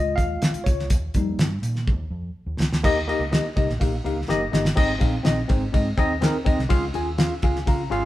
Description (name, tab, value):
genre	uptempo 1960s-style soul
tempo	124 BPM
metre	4/4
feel	straight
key	Ab major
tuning	A4 = 440 Hz
part	tine electric piano	accompaniment	0.0-8.1 s	G3 to Bb5	-24 LUFS	left 2 dB	medium stereo tremolo
part	vintage muted fingered electric bass	bass	0.0-8.1 s	Gb1 to Db3	-28 LUFS	equal	none
part	cloth-damped thuddy drum kit	drums	0.2-8.0 s	crash cymbal, hi-hat, kick drum, ride cymbal, snare drum	-22 LUFS	equal	none
room	moderate stone room reverb, RT60 1.2 s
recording	band playing live in one room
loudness	-20 LUFS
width	side -15 dB against mid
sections	0.0-2.8 A section; 2.8-4.8 B section; 4.8-8.1 C section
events	tine electric piano solo 0.0-2.8; drum fill 1.9-2.8, 4.3-4.8; tine electric piano fill 7.2-8.1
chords	0.0 Db; 0.9 Eb; 4.8 Ab; 6.7 Db